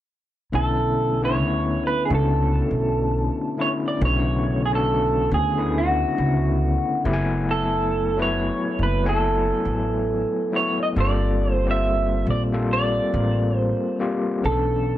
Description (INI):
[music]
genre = R&B, neo-soul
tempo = 69 BPM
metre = 4/4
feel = swing 61% on 16ths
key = unclear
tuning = A4 = 440 Hz
[part]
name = overdriven tine electric piano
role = accompaniment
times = 0.5-15.0 s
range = C#3 to G#5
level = -24 LUFS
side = left 3 dB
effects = fast tremolo
[part]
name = upright bass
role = bass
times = 0.5-15.0 s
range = F#1 to D2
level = -23 LUFS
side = equal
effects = none
[part]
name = electric guitar through a small old amp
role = melody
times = 0.6-15.0 s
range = F#4 to E5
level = -24 LUFS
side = right 2 dB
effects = analog chorus
[sound]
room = moderate studio reverb, RT60 0.5 s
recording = dark, warm production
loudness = -20 LUFS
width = side -13 dB against mid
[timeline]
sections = 0.5-15.0 A section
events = none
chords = 0.5 Bm11; 7.0 F#m11; 11.0 Gm11; 14.4 Bm11